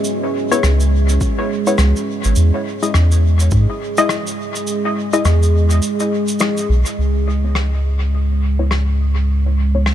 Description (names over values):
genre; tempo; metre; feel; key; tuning
ambient dub; 104 BPM; 4/4; swing 60% on 16ths; C# minor; A4 = 438 Hz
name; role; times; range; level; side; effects
deep dark ambient pad; sustained chords; 0.0-9.9 s; G#3 to E5; -21 LUFS; right 2 dB; chorus, built-in reverb
cabasa and rim click; drums; 0.0-9.9 s; none; -25 LUFS; left 1 dB; dub echo
filtered dub chord stab; stabs; 0.5-9.8 s; G#3 to D#5; -22 LUFS; left 4 dB; chorus, dub echo
soft dub sub bass; bass; 0.6-9.9 s; G#1 to G#2; -14 LUFS; equal; tube saturation
electronic kick drum; drums; 1.2-3.7 s; none; -20 LUFS; equal; none
room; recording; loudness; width
light reverb, studio reverb; none; -14 LUFS; side -11 dB against mid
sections
0.0-7.0 A section; 7.0-9.9 B section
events
kick drops out 4.7-7.0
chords
0.0 C#m7; 2.4 Emaj7; 7.0 C#m7